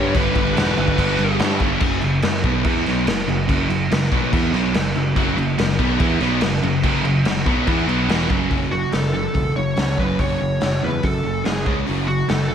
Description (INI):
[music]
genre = hard rock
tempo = 143 BPM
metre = 4/4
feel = straight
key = unclear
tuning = A4 = 439 Hz
[part]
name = biting lead guitar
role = melody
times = 0.0-1.4, 8.7-12.5 s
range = F#4 to C#5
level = -24 LUFS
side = equal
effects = overdrive
[part]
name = heavy high-gain guitar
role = riff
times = 0.0-1.8, 5.2-8.5 s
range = E2 to E4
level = -26 LUFS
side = left 2 dB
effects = distortion
[part]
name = sludgy distorted guitar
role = riff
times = 0.0-12.5 s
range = E2 to E4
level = -25 LUFS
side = left 10 dB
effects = overdrive
[part]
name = sludgy distorted guitar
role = riff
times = 0.0-12.5 s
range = E2 to E4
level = -24 LUFS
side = right 9 dB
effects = overdrive
[part]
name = modern bright picked electric bass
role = bass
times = 0.0-12.5 s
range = E1 to G2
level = -24 LUFS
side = equal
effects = none
[part]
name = raw garage drum kit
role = drums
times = 0.1-12.4 s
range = crash cymbal, hi-hat, kick drum, snare drum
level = -21 LUFS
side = equal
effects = none
[sound]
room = light reverb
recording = none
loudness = -17 LUFS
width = side -8 dB against mid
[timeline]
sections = 0.0-1.8 A section; 1.8-8.5 B section; 8.5-12.5 C section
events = none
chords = 0.0 G; 1.8 F#5; 8.5 F#m; 11.7 C#5; 11.9 F#m